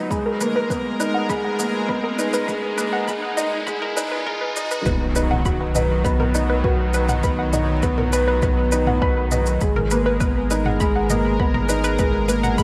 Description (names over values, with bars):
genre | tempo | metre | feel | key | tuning
piano and strings electronica | 101 BPM | 4/4 | straight | B major | A4 = 440 Hz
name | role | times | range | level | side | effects
lush unison pad | sustained chords | 0.0-12.6 s | D#3 to A#4 | -30 LUFS | equal | chorus, sidechain pumping
felt-muted upright piano | riff | 0.0-12.6 s | G#3 to B4 | -25 LUFS | equal | digital delay
warm sub bass | bass | 0.0-12.6 s | G#1 to B1 | -26 LUFS | equal | tube saturation, sidechain pumping, high-pass filter
riser and impact | sound effects | 0.2-7.2 s | none | -34 LUFS | equal | none
analog pluck | arpeggios | 0.1-12.6 s | A#4 to B5 | -29 LUFS | equal | chorus, sidechain pumping, digital delay
electronic kick drum | drums | 0.1-12.6 s | none | -26 LUFS | equal | none
electronic shaker and toms | drums | 0.1-12.6 s | none | -32 LUFS | equal | none
room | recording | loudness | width
moderate concert hall reverb, RT60 2.0 s | high-pass filter | -21 LUFS | mono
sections
0.0-4.9 A section; 4.9-12.6 B section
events
build-up 0.0-4.9; filter sweep on synth arpeggio sound 0.0-4.9; filter sweep 0.0-4.9; riser 0.2-4.9; drop 4.9-12.6; impact 4.9-7.2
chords
0.1 G#madd9; 4.9 B; 9.6 G#madd9